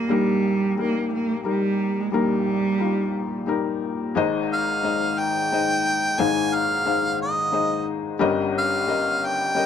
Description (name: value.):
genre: acoustic folk-pop ballad.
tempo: 89 BPM.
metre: 3/4.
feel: straight.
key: Ab major.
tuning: A4 = 440 Hz.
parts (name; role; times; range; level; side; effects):
clear cello; second line; 0.0-3.5 s; G3 to Bb3; -23 LUFS; right 4 dB; none.
felt-muted upright piano; accompaniment; 0.0-9.7 s; G1 to F5; -23 LUFS; left 5 dB; none.
warm harmonica; melody; 4.5-9.7 s; Eb5 to Ab5; -22 LUFS; right 1 dB; none.
room: moderate studio reverb, RT60 0.6 s.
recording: dark, warm production.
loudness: -20 LUFS.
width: side -8 dB against mid.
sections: 0.0-4.2 A section; 4.2-9.7 B section.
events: cello solo 0.0-4.2.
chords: 0.0 Eb/Bb; 4.2 Ab; 8.2 Eb7/G.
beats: | 0.10 0.78 1.46 | 2.14 2.81 3.50 | 4.18 4.85 5.53 | 6.20 6.87 7.54 | 8.21 8.88 9.55.